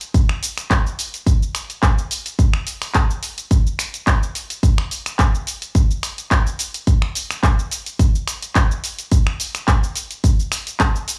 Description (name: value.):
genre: nu-disco.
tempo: 107 BPM.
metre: 4/4.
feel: swing 53% on 16ths.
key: none.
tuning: none.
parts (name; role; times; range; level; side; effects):
house drum kit; drums; 0.0-11.2 s; finger snaps, handclaps, hi-hat, shaker; -25 LUFS; equal; studio reverb.
electronic kick drum; drums; 0.1-10.9 s; none; -18 LUFS; equal; studio reverb.
room: digital ambience.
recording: dry, gritty hardware recording, studio ambience.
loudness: -20 LUFS.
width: mono.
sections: 0.0-11.2 A section.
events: none.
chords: none.